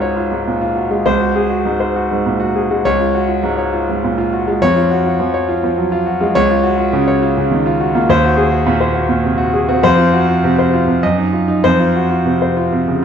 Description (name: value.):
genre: classical, virtuoso piano study.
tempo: 102 BPM.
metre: 3/4.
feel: rubato.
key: Db major, Bb minor from 6.3 s.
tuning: A4 = 436 Hz.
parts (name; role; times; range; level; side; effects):
clear concert grand piano; solo; 0.0-13.0 s; Db2 to Eb5; -12 LUFS; equal; none.
room: wet recital hall reverb, RT60 1.5 s.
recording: dark, warm production.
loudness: -12 LUFS.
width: side -8 dB against mid.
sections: 0.0-13.0 A section.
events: none.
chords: 0.0 Db; 1.1 Ab7/Db; 2.8 Db; 4.6 Db/F; 6.3 Bbm/Db (rootless); 8.1 Cm7b5/Eb; 9.8 F5; 11.0 Ebm/Gb; 11.6 F5.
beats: 0.47 | 1.06 1.65 2.24 | 2.83 3.43 4.02 | 4.61 5.19 5.77 | 6.35 6.93 7.50 | 8.08 8.66 9.25 | 9.84 10.43 11.03 | 11.64 12.27 12.88.